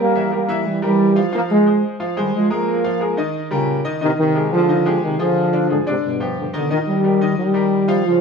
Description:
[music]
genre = latin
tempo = 179 BPM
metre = 4/4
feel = straight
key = unclear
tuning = A4 = 441 Hz
[part]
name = dark trombone section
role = melody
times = 0.0-8.2 s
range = G2 to Bb3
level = -17 LUFS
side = equal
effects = none
[part]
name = bright concert grand piano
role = accompaniment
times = 0.0-8.2 s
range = D3 to F5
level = -22 LUFS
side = left 1 dB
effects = none
[sound]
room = moderate stone room reverb, RT60 1.0 s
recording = band playing live in one room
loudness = -16 LUFS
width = side -5 dB against mid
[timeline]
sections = 0.0-6.7 A section; 6.7-8.2 B section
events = none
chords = 0.0 Edim; 1.3 Fm; 2.7 Bb5; 3.3 Eb7; 4.0 Abmaj7; 5.4 Ddim; 6.0 G7; 6.7 Eb

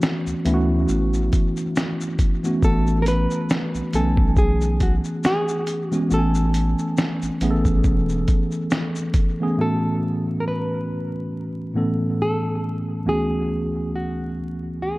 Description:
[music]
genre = lo-fi hip hop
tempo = 69 BPM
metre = 4/4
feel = swing 56% on 16ths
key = A major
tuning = A4 = 440 Hz
[part]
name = nylon-string guitar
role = melody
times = 0.0-15.0 s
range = F#4 to B4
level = -27 LUFS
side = equal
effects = low-pass filter, dub echo
[part]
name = tine electric piano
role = accompaniment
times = 0.0-15.0 s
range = D2 to G#5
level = -22 LUFS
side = equal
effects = medium stereo tremolo, low-pass filter, dub echo
[part]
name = lo-fi sampler-style drum kit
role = drums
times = 0.0-9.4 s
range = hi-hat, kick drum, shaker, snare drum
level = -22 LUFS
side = equal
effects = none
[part]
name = saturated sub bass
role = bass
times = 0.3-8.3 s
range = E1 to D2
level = -22 LUFS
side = equal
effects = none
[sound]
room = light reverb, digital ambience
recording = echo-heavy mix, vinyl crackle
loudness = -19 LUFS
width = side -20 dB against mid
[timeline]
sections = 0.0-9.6 A section; 9.6-15.0 B section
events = none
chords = 0.0 Dmaj13; 2.6 Amaj13; 6.1 Amaj9; 9.6 A69; 13.1 Dmaj13

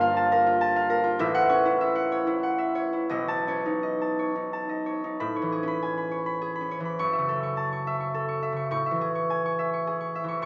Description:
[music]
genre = classical, solo harp piece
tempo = 82-110 BPM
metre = 3/4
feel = rubato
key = unclear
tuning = A4 = 445 Hz
[part]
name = concert harp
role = solo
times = 0.0-10.5 s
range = G1 to C#6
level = -23 LUFS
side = equal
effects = none
[sound]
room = wet concert hall reverb, RT60 1.9 s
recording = small speaker sound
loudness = -24 LUFS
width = side -30 dB against mid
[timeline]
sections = 0.0-5.2 A section; 5.2-10.5 B section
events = none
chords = 0.0 Gm9; 1.2 A6; 3.1 B9; 5.2 Amaj9; 7.0 F#m7; 8.7 Amaj7

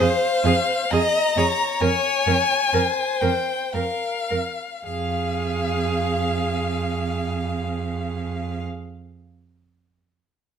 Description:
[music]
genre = classical, slow romantic movement for string quartet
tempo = 50-73 BPM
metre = 3/4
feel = rubato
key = F minor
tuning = A4 = 438 Hz
[part]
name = rich violin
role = melody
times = 0.0-8.6 s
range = F5 to Bb5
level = -25 LUFS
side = left 4 dB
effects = none
[part]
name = rich violin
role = second line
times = 0.0-8.6 s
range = Bb4 to F5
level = -26 LUFS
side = left 2 dB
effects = none
[part]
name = rich viola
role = accompaniment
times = 0.0-8.6 s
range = Ab4 to Bb4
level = -28 LUFS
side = right 4 dB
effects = none
[part]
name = rich cello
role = bass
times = 0.0-8.6 s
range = F2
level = -25 LUFS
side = right 4 dB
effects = none
[sound]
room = wet stone room reverb, RT60 0.9 s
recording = none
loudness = -20 LUFS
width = side -7 dB against mid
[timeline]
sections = 0.0-4.9 A section; 4.9-7.9 B section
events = slowing down 0.0-4.9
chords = 0.0 Fm; 1.8 Bbm/F; 4.9 Fm

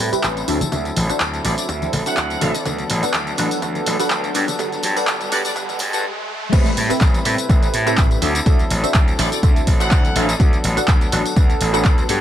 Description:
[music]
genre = filtered disco house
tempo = 124 BPM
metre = 4/4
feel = swing 54% on 16ths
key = unclear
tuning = A4 = 441 Hz
[part]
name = funky polysynth comp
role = accompaniment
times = 0.0-12.2 s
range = C4 to F#5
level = -24 LUFS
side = right 1 dB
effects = chorus, phaser, sidechain pumping, low-pass filter
[part]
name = direct-recorded clean electric guitar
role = riff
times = 0.0-12.2 s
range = F#3 to B4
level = -27 LUFS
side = left 2 dB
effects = vintage 12-bit sampler grit, sidechain pumping, low-pass filter
[part]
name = gritty slap bass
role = bass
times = 0.0-12.2 s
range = G1 to A2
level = -22 LUFS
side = equal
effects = overdrive, sidechain pumping, low-pass filter
[part]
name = punchy analog drum machine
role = drums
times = 0.0-12.2 s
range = crash cymbal, handclaps, hi-hat, tambourine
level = -24 LUFS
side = equal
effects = high-pass filter on hats, high-pass filter on perc, high-pass filter on snare, high-pass filter on cymbals, high-pass filter on room
[part]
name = riser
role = sound effects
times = 1.7-6.5 s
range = none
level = -31 LUFS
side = right 1 dB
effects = none
[part]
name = tambourine and congas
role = percussion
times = 0.1-6.0 s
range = none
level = -29 LUFS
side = left 2 dB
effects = sidechain pumping on perc, low-pass filter on perc
[part]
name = electronic kick drum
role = drums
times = 0.2-12.0 s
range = none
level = -16 LUFS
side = equal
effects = high-pass filter on kick, high-pass filter on room
[part]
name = clear trumpet section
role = melody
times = 1.4-5.5, 9.2-10.4 s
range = D5 to F#5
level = -29 LUFS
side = equal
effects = sidechain pumping, low-pass filter, dub echo
[sound]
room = light reverb, digital ambience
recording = high-pass filter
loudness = -16 LUFS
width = side -11 dB against mid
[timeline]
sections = 0.0-6.5 A section; 6.5-12.2 B section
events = build-up 0.0-6.5; filter sweep on trumpet section 0.0-6.5; filter sweep 0.0-6.5; riser 1.7-6.5; stop 6.0-6.5; drop 6.5-12.2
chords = 0.5 D9; 2.7 Bm7; 4.3 Gmaj9; 6.5 Am9; 8.2 D9; 10.4 Bm7

